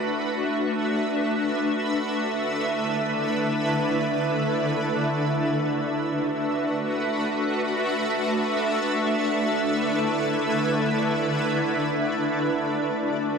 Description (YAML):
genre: hip hop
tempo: free time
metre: none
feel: none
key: D major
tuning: A4 = 440 Hz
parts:
  - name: shimmering ambient pad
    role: solo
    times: 0.0-13.4 s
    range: D3 to E5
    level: -22 LUFS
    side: equal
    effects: chorus, built-in reverb, tape echo
room: moderate shimmer reverb, RT60 7.1 s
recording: dry, gritty hardware recording, transformer saturation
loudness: -22 LUFS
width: side -6 dB against mid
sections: 0.0-5.5 A section; 5.5-13.4 B section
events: none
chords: 0.0 D69; 2.1 E7sus4/D; 5.5 D69; 8.9 E7sus4/D; 12.3 D69